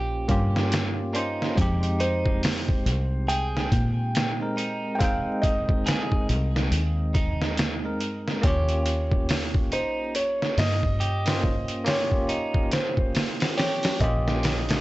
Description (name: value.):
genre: trip hop.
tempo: 70 BPM.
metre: 4/4.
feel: swing 59% on 16ths.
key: F minor.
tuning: A4 = 440 Hz.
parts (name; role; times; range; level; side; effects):
bell-like tine electric piano; accompaniment; 0.0-14.8 s; Ab3 to G5; -31 LUFS; equal; tremolo, vintage 12-bit sampler grit, tape echo.
electric guitar at the edge of break-up; arpeggios; 0.0-14.0 s; Eb4 to Ab4; -34 LUFS; right 2 dB; tape echo.
deep dub fingered electric bass; bass; 0.0-14.8 s; Bb1 to Bb2; -27 LUFS; equal; none.
trip hop sampler-style drum kit; drums; 0.3-14.8 s; hi-hat, kick drum, snare drum; -25 LUFS; equal; none.
felt-muted upright piano; melody; 2.0-14.8 s; C5 to G5; -30 LUFS; equal; dub echo.
room: little or no reverb.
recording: dry, gritty hardware recording, vinyl crackle, nothing above 8.0 kHz.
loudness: -22 LUFS.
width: side -18 dB against mid.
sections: 0.0-14.8 A section.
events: none.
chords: 0.0 Eb9; 1.6 Fm7; 8.4 Eb9.